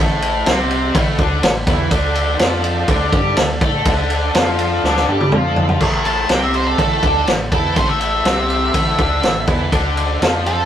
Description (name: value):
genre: blues rock power trio and southern rock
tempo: 123 BPM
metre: 4/4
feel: straight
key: unclear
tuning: A4 = 440 Hz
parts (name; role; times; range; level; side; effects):
- cranked stack guitar; riff; 0.0-10.7 s; A2 to A4; -20 LUFS; left 2 dB; overdrive
- rubbery square bass; bass; 0.0-10.7 s; A1 to A2; -22 LUFS; equal; none
- vintage drum kit; drums; 0.2-10.6 s; crash cymbal, kick drum, ride cymbal, snare drum, toms; -17 LUFS; equal; none
- overdriven tonewheel organ; sustained chords; 1.6-10.7 s; G3 to E5; -27 LUFS; right 4 dB; slow rotary speaker, chorus vibrato
- octave-fuzz lead guitar; melody; 6.1-10.7 s; A4 to A5; -19 LUFS; right 1 dB; distortion
room: moderate studio reverb, RT60 0.6 s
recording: rough rehearsal-room recording, tube saturation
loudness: -14 LUFS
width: side -10 dB against mid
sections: 0.0-5.8 A section; 5.8-10.7 B section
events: drum fill 4.8-5.8; lead electric guitar solo 5.8-10.7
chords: 0.0 A5; 1.9 D5; 5.8 A5; 9.7 D5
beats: 0.47 0.95 1.44 | 1.92 2.41 2.89 3.38 | 3.86 4.35 4.83 5.32 | 5.81 6.30 6.79 7.28 | 7.77 8.26 8.75 9.24 | 9.73 10.22